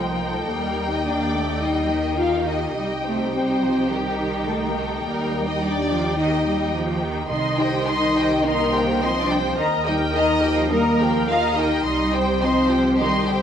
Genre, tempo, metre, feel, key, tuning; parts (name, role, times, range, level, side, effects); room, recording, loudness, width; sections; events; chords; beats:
cinematic, heroic adventure film score; 106 BPM; 4/4; straight; C dorian; A4 = 440 Hz
warm symphonic violin section; melody; 0.0-13.4 s; G5 to C6; -27 LUFS; left 4 dB
warm symphonic viola section; accompaniment; 0.0-13.4 s; Eb4 to Eb5; -27 LUFS; right 2 dB
dark French horn section; sustained chords; 0.0-13.4 s; G3 to F4; -23 LUFS; left 1 dB
warm studio cello section; bass; 0.0-13.4 s; D3 to Bb3; -28 LUFS; right 2 dB
warm symphonic double bass section; bass; 0.0-13.4 s; C2 to Eb2; -29 LUFS; right 3 dB
warm symphonic violin section; second line; 0.1-13.4 s; G4 to F5; -28 LUFS; left 1 dB
timpani; percussion; 7.3-8.1 s; C3; -32 LUFS; right 2 dB
wet scoring stage reverb, RT60 1.6 s; -19 LUFS; side -8 dB against mid
0.0-13.4 A section
0.5 Eb; 2.8 Cm; 5.0 Eb; 7.3 Cm; 9.6 Eb; 11.9 Cm
| 0.48 1.05 1.62 2.19 | 2.77 3.34 3.91 4.47 | 5.05 5.62 6.18 6.75 | 7.32 7.89 8.45 9.02 | 9.59 10.15 10.72 11.29 | 11.85 12.42 12.99